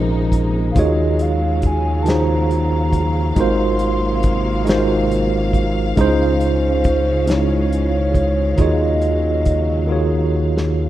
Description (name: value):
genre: slow six-eight R&B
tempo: 46 BPM (dotted quarters)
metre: 6/8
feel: straight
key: Eb dorian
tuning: A4 = 440 Hz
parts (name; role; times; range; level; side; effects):
- tine electric piano; accompaniment; 0.0-10.9 s; Bb2 to Db5; -18 LUFS; right 1 dB; medium stereo tremolo
- rich studio string section; sustained chords; 0.0-10.9 s; C3 to F5; -27 LUFS; left 2 dB; none
- rubbery square bass; bass; 0.0-10.9 s; Ab1 to Eb2; -20 LUFS; equal; none
- cloth-damped thuddy drum kit; drums; 0.3-10.8 s; hi-hat, kick drum, snare drum; -19 LUFS; equal; none
- hollow clarinet-like synth lead; melody; 0.7-10.8 s; C5 to C6; -24 LUFS; equal; chorus, slapback echo
room: light reverb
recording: rough home demo mix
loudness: -15 LUFS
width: side -13 dB against mid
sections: 0.0-10.9 A section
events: drum fill 9.9-10.9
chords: 0.0 Bb9sus4; 0.8 Ebm11; 3.4 Ab13; 6.0 Dbmaj7; 8.6 Ebm11